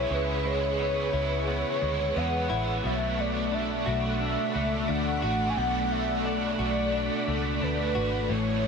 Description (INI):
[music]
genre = dream pop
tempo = 88 BPM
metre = 4/4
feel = straight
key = B dorian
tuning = A4 = 440 Hz
[part]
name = warm velvety synth lead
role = melody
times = 0.0-8.7 s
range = B4 to G#5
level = -30 LUFS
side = equal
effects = chorus, shimmer reverb, tape echo
[part]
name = overdriven electric guitar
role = accompaniment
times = 0.0-8.7 s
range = A2 to G#4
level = -35 LUFS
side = right 4 dB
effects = tremolo, ensemble chorus, shimmer reverb
[part]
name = ensemble organ-string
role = sustained chords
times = 0.0-8.7 s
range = A3 to C#6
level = -32 LUFS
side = equal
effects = ensemble chorus, shimmer reverb
[part]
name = direct-recorded clean electric guitar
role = arpeggios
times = 0.0-8.7 s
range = A2 to F#4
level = -32 LUFS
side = left 3 dB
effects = lush chorus, shimmer reverb, tape echo
[part]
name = vintage muted fingered electric bass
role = bass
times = 0.0-8.7 s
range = G#1 to E2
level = -32 LUFS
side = equal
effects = none
[sound]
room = moderate huge ambient reverb, RT60 7.6 s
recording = none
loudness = -25 LUFS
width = side -5 dB against mid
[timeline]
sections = 0.0-8.7 A section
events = none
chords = 0.0 C#m7; 2.8 Bm7